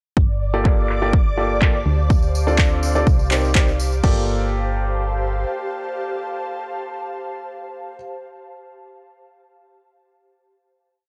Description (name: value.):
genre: piano house.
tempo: 124 BPM.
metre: 4/4.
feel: straight.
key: G minor.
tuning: A4 = 440 Hz.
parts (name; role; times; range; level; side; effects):
string machine, violins; sustained chords; 0.2-4.0 s; D5 to D6; -32 LUFS; equal; ensemble chorus, sidechain pumping.
solid FM bass; bass; 0.2-5.4 s; G1 to D2; -24 LUFS; equal; transformer saturation, sidechain pumping.
electronic kick drum; drums; 0.2-4.1 s; none; -19 LUFS; equal; overdrive.
ethereal airy pad; texture; 1.6-8.2 s; G4 to A5; -32 LUFS; equal; ensemble chorus, built-in reverb, phaser, sidechain pumping.
clear upright piano; riff; 0.5-7.9 s; Bb3 to D5; -27 LUFS; equal; sidechain pumping, analog delay.
punchy analog drum machine; drums; 0.7-4.1 s; crash cymbal, handclaps; -27 LUFS; equal; low-pass filter on snare, low-pass filter on cymbals.
tambourine; percussion; 2.1-4.0 s; none; -37 LUFS; equal; none.
room: light reverb.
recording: dry, gritty hardware recording, cassette tape.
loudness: -20 LUFS.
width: mono.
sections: 0.2-4.0 breakdown; 4.0-7.9 final chord.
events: filter sweep on drum 0.2-4.0.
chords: 0.2 Gm9; 1.9 Dm7; 3.1 Cm9; 4.0 Gm9.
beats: | 0.17 0.65 1.13 1.62 | 2.10 2.58 3.07 3.55 | 4.04 4.52 5.00 5.49 | 5.97 6.46 6.94 7.42.